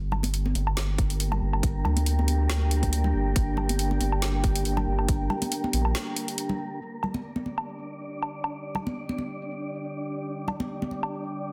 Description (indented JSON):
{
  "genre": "deep dubstep",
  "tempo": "139 BPM",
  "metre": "4/4",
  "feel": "swing 55% on 16ths, half-time",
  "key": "G minor",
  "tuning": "A4 = 440 Hz",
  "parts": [
    { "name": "dark analog pad", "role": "sustained chords", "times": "0.0-11.5 s", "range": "D4 to G5", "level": "-36 LUFS", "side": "equal", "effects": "chorus" },
    { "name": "saturated sub bass", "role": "bass", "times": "0.0-5.9 s", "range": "G1 to D2", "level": "-28 LUFS", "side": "equal", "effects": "none" },
    { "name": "wind-like tuned noise texture", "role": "texture", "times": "0.4-11.5 s", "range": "Bb3 to D5", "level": "-40 LUFS", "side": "equal", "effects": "built-in reverb" },
    { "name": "garage drum kit", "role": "drums", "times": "0.1-11.1 s", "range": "hi-hat, snare drum, woodblock", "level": "-34 LUFS", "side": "equal", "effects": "none" },
    { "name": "congas", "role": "percussion", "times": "0.1-11.0 s", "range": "none", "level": "-36 LUFS", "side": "equal", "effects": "dub echo" },
    { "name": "electronic kick drum", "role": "drums", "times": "1.0-5.2 s", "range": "none", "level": "-28 LUFS", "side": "equal", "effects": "none" }
  ],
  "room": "light reverb, digital ambience",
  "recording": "dense, heavily limited modern master",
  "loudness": "-28 LUFS",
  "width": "mono",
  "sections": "0.0-6.8 A section; 6.8-11.5 B section",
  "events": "break 5.9-6.8",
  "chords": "0.0 G5"
}